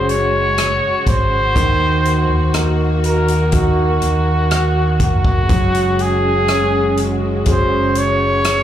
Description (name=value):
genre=pop ballad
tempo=61 BPM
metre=4/4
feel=straight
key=unclear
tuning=A4 = 440 Hz
part: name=breathy trumpet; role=melody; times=0.0-8.6 s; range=Gb4 to Db5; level=-18 LUFS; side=right 1 dB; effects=slapback echo, digital delay
part: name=warm concert grand piano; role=accompaniment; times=0.0-8.6 s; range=Eb3 to Bb4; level=-22 LUFS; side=left 1 dB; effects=slapback echo
part: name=warm studio string section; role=sustained chords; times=0.0-8.6 s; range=Db3 to Gb4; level=-22 LUFS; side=right 1 dB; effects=none
part: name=fingered electric bass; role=bass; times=0.0-8.6 s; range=F1 to Eb2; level=-18 LUFS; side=equal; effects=none
part: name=natural country drum kit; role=drums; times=0.1-8.6 s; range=hi-hat, kick drum, rim click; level=-19 LUFS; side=equal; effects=none
room=light reverb, small room ambience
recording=live gig heard through the venue's PA, club reverb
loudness=-13 LUFS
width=side -10 dB against mid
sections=0.0-8.6 A section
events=none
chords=0.0 Gbsus2; 1.6 Ebm; 5.5 Gbsus2